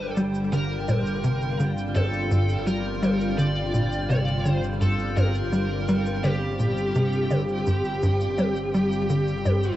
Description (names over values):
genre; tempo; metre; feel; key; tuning
ambient, sequencer-driven space music; 84 BPM; 4/4; straight; G minor; A4 = 440 Hz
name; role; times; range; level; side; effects
high-gain lead guitar; melody; 0.0-9.8 s; G4 to D5; -30 LUFS; left 1 dB; distortion, cassette tape, ping-pong delay
lush unison pad; sustained chords; 0.0-9.8 s; D3 to F4; -30 LUFS; equal; chorus, phaser, cassette tape
analog drone; bass; 0.0-9.8 s; G1; -31 LUFS; equal; chorus
bubbling stepped-filter texture; texture; 0.0-9.8 s; G5; -37 LUFS; right 4 dB; chorus, built-in reverb, cassette tape
tight sequencer bass; riff; 0.2-9.7 s; G2 to G3; -24 LUFS; equal; lush chorus, cassette tape, ping-pong delay
electronic shaker and toms; percussion; 0.2-9.8 s; none; -34 LUFS; left 2 dB; cassette tape, ping-pong delay
room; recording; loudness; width
moderate spring reverb, RT60 1.3 s, digital ambience; home recording on cassette, nothing above 8.0 kHz; -22 LUFS; side -14 dB against mid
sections
0.0-9.8 A section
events
none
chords
0.0 Gm7